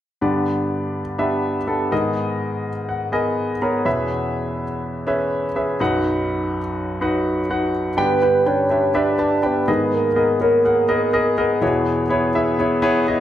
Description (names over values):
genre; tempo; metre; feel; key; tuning
pop; 124 BPM; 4/4; straight; unclear; A4 = 442 Hz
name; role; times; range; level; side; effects
clear grand piano; accompaniment; 0.2-13.2 s; B1 to B5; -19 LUFS; left 1 dB; none
soft octave-layered synth lead; melody; 8.0-11.6 s; A#4 to D5; -18 LUFS; right 1 dB; chorus
room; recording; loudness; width
wet large studio reverb, RT60 1.1 s, small room ambience; none; -18 LUFS; side -11 dB against mid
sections
0.2-8.0 A section; 8.0-13.2 B section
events
grand piano fill 2.6-4.1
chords
0.2 G; 1.9 G#madd9; 3.9 E6; 5.8 B; 8.0 G; 9.7 G#madd9; 11.6 E6